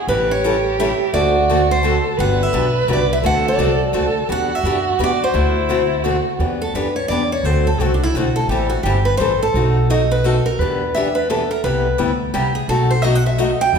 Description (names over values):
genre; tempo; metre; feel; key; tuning
acoustic string swing (jazz manouche); 171 BPM; 3/4; swing 62% on 8ths; E minor from 6.4 s; A4 = 440 Hz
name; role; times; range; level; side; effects
warm violin; second line; 0.0-6.4 s; E4 to B4; -20 LUFS; right 4 dB; none
picked steel-string acoustic guitar; melody; 0.1-13.8 s; D4 to G5; -20 LUFS; right 1 dB; none
picked steel-string acoustic guitar; accompaniment; 0.1-13.8 s; B2 to A4; -21 LUFS; left 3 dB; none
upright bass; bass; 0.1-13.8 s; G1 to F#2; -21 LUFS; equal; none
room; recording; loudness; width
wet recital hall reverb, RT60 1.6 s; recorded in a church or concert hall; -15 LUFS; side -6 dB against mid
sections
0.0-6.4 A section; 6.4-13.8 B section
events
steel-string acoustic guitar solo 6.4-13.8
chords
0.1 A7; 1.1 D7; 2.2 Gmaj7; 3.2 D7; 4.3 Em7; 5.3 D7; 6.4 Em7; 7.4 D7; 8.5 Am7; 9.6 B7; 10.6 Em7; 11.7 Cmaj7; 12.7 B7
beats
| 0.09 0.44 0.79 | 1.14 1.49 1.84 | 2.19 2.54 2.89 | 3.24 3.59 3.94 | 4.29 4.64 4.99 | 5.34 5.69 6.04 | 6.39 6.74 7.09 | 7.45 7.80 8.15 | 8.50 8.85 9.20 | 9.55 9.90 10.25 | 10.60 10.95 11.30 | 11.65 12.00 12.35 | 12.70 13.05 13.39 | 13.74